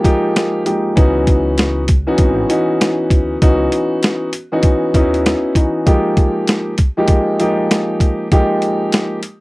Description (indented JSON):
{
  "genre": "hip hop, boom-bap hip-hop",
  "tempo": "98 BPM",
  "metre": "4/4",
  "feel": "swing 60% on 16ths",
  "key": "unclear",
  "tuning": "A4 = 439 Hz",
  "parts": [
    { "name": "dark grand piano", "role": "accompaniment", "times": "0.0-9.2 s", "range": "Fb3 to G4", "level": "-15 LUFS", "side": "equal", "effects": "high-pass filter, low-pass filter, cassette tape" },
    { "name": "boom bap sampler-style drum kit", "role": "drums", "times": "0.0-9.4 s", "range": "hi-hat, kick drum, snare drum", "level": "-13 LUFS", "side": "equal", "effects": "none" },
    { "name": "upright bass", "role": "bass", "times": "1.0-5.3 s", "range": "Ab1 to Eb2", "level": "-21 LUFS", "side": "equal", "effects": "none" }
  ],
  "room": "light reverb",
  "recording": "home recording on cassette",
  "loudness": "-13 LUFS",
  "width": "side -21 dB against mid",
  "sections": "0.0-9.4 A section",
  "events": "break 0.0-1.0",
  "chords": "0.0 Fm11; 1.0 Dbm11; 5.9 Fm11"
}